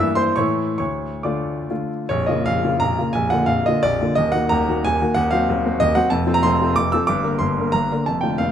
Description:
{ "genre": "classical, romantic triple-time dance for piano with dotted rhythms", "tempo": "126-202 BPM", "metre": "3/4", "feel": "rubato", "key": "unclear", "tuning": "A4 = 438 Hz", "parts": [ { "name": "warm baby grand piano", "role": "solo", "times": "0.0-8.5 s", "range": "Bb0 to E6", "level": "-17 LUFS", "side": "equal", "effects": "none" } ], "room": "moderate concert hall reverb, RT60 2.3 s", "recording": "close, detailed microphones", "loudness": "-17 LUFS", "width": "side -9 dB against mid", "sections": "0.0-2.1 A section; 2.1-8.5 B section", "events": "none", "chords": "0.4 A; 0.8 Dm; 2.1 Bbm; 3.1 Bb; 4.2 Ebm; 5.2 Cdim/Eb; 6.1 F; 7.1 Gm" }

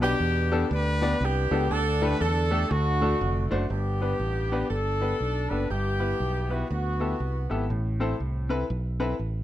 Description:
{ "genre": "uptempo gospel", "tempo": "120 BPM", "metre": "4/4", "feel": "swing 61% on 8ths", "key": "G major", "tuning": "A4 = 438 Hz", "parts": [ { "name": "warm horn section", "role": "melody", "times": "0.0-7.7 s", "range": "A3 to B4", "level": "-28 LUFS", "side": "equal", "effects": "none" }, { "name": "clear baby grand piano", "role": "accompaniment", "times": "0.0-9.1 s", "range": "G2 to D5", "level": "-30 LUFS", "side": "left 2 dB", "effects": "none" }, { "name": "fingered electric bass", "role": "bass", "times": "0.0-9.4 s", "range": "F1 to E2", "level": "-27 LUFS", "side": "right 1 dB", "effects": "none" } ], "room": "light reverb, studio reverb", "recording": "dark, warm production", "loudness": "-24 LUFS", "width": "side -13 dB against mid", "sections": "0.0-3.7 A section; 3.7-9.4 B section", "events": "none", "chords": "0.0 G/B; 1.7 Dsus4; 2.7 D; 3.7 G; 5.7 Em/G; 7.7 Am" }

